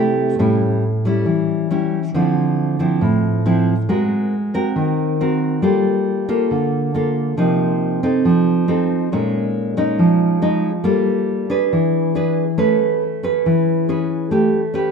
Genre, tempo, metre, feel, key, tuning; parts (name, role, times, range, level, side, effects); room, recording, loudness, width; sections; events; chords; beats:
bossa nova; 138 BPM; 4/4; straight; A4 = 438 Hz
nylon-string guitar; solo; 0.0-14.9 s; A2 to B4; -16 LUFS; equal
moderate recital hall reverb, RT60 1.5 s; -15 LUFS; side -5 dB against mid
0.0-12.6 A section; 12.6-14.9 B section
0.4 A7; 2.1 Dm9; 3.9 Ab9; 5.6 Gm9; 7.4 Cm7; 8.2 F7; 9.1 Bbm7; 10.8 Gm9; 11.7 E7; 12.6 Amaj9; 14.3 A9
| 0.40 0.83 1.27 1.70 | 2.14 2.58 3.01 3.45 | 3.88 4.32 4.76 5.19 | 5.63 6.06 6.50 6.93 | 7.37 7.80 8.24 8.68 | 9.11 9.54 9.98 10.41 | 10.85 11.28 11.72 12.15 | 12.58 13.02 13.45 13.88 | 14.32 14.75